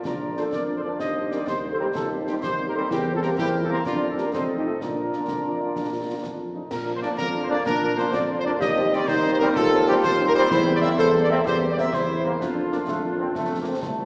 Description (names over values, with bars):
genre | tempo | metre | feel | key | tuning
military-style march for wind band | 126 BPM (dotted quarters) | 6/8 | straight | Bb major | A4 = 442 Hz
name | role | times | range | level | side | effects
clear woodwind section | second line | 0.0-14.0 s | Bb3 to Eb5 | -27 LUFS | equal | none
mellow hollow flute section | second line | 0.0-13.8 s | D4 to E5 | -29 LUFS | equal | none
warm euphonium | second line | 0.0-6.5 s | C4 to E4 | -31 LUFS | equal | none
dark trumpet section | melody | 0.1-13.8 s | F4 to E5 | -27 LUFS | equal | none
warm tuba | bass | 0.1-14.1 s | Bb1 to Bb2 | -27 LUFS | equal | none
concert snare drum, concert bass drum and clash cymbals | drums | 0.1-14.0 s | none | -34 LUFS | equal | none
mellow French horn section | accompaniment | 0.2-14.0 s | D3 to Eb4 | -32 LUFS | equal | none
clear trombone section | sustained chords | 0.4-14.1 s | F3 to F4 | -31 LUFS | equal | none
room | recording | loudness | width
wet scoring stage reverb, RT60 2.1 s | heard from further back in the room, small speaker sound | -20 LUFS | side -37 dB against mid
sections
0.0-6.7 A section; 6.7-14.1 A section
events
none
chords
0.0 Bb; 1.0 Cm/Eb; 2.9 C7/E; 3.9 Bb/F; 4.3 F7; 4.8 Bb; 8.6 Cm/Eb; 10.5 C7/E; 12.4 Bb/F; 13.4 F